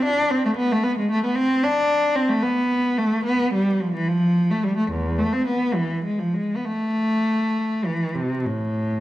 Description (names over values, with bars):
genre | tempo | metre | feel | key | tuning
classical, baroque-style suite movement for unaccompanied cello | 66-76 BPM (dotted quarters) | 12/8 | rubato | A minor | A4 = 440 Hz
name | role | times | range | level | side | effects
rich cello | solo | 0.0-9.0 s | E2 to D4 | -20 LUFS | equal | none
room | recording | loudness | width
moderate recital hall reverb, RT60 1.6 s | vinyl crackle | -20 LUFS | side -15 dB against mid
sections
0.0-9.0 A section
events
none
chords
none